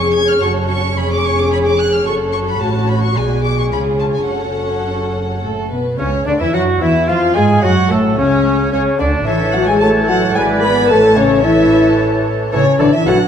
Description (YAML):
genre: quick classical-period movement for symphony orchestra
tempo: 110 BPM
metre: 3/4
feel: straight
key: F# minor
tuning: A4 = 438 Hz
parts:
  - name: warm chamber violin section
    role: melody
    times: 0.0-13.1 s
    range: A3 to G#6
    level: -24 LUFS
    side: left 3 dB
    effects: none
  - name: warm chamber violin section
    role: second line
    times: 0.0-13.3 s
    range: F#4 to B5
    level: -23 LUFS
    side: left 1 dB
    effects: none
  - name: dark studio viola section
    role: accompaniment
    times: 0.0-13.1 s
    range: E3 to B4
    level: -23 LUFS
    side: right 1 dB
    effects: none
  - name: dark French horn section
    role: sustained chords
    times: 0.0-13.2 s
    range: A3 to B4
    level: -16 LUFS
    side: left 2 dB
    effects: none
  - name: dark chamber cello section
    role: bass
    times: 0.0-13.3 s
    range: E#2 to B3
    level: -20 LUFS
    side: right 2 dB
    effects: none
  - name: dark chamber double bass section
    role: bass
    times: 0.0-13.2 s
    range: E#1 to Ab2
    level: -21 LUFS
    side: right 3 dB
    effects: none
  - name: mellow concert flute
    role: second line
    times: 5.4-13.1 s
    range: A4 to B5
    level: -22 LUFS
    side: left 2 dB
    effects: none
  - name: clear oboe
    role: second line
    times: 6.0-13.2 s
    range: C#4 to A5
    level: -24 LUFS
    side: right 1 dB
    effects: none
  - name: mellow clarinet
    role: second line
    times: 6.0-13.2 s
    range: A3 to D5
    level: -24 LUFS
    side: left 2 dB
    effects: none
  - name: mellow bassoon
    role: accompaniment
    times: 6.0-13.2 s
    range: A2 to Ab3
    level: -22 LUFS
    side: right 3 dB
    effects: none
room: wet recital hall reverb, RT60 1.8 s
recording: none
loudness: -12 LUFS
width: side -8 dB against mid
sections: 0.0-6.0 A section; 6.0-13.3 B section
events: none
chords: 0.4 F#m; 1.0 C#/E#; 2.1 F#m; 2.6 F#m/A; 3.2 G#m7b5/B; 3.7 C#; 4.3 F#m; 6.0 F#5/C#; 7.1 Fm; 7.6 F#m; 9.3 A; 10.4 E7/G#; 10.9 A